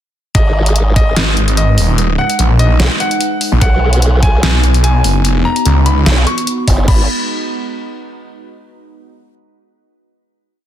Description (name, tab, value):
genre	heavy wobble dubstep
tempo	147 BPM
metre	4/4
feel	swing 54% on 16ths, half-time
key	G# minor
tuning	A4 = 440 Hz
part	bright baby grand piano	melody	0.3-7.0 s	D#5 to C#6	-20 LUFS	left 1 dB	ping-pong delay
part	evolving wavetable pad	sustained chords	0.9-7.1 s	G#3 to B4	-22 LUFS	equal	chorus, built-in reverb, sidechain pumping
part	formant-sweep wobble bass	bass	0.3-7.1 s	F#1 to B1	-13 LUFS	equal	chorus, overdrive
part	dubstep drum kit	drums	0.3-7.0 s	crash cymbal, hi-hat, snare drum	-18 LUFS	left 1 dB	none
part	electronic kick drum	drums	0.3-1.0, 3.6-7.0 s	none	-12 LUFS	equal	none
part	snarling distorted saw bass	bass	1.2-6.0 s	D#1 to C#2	-11 LUFS	equal	distortion, overdrive
room	little or no reverb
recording	dense, heavily limited modern master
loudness	-10 LUFS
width	side -11 dB against mid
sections	0.3-6.9 drop; 6.9-8.5 final chord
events	drop 0.3-6.9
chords	0.3 G#m; 3.6 B; 6.9 G#m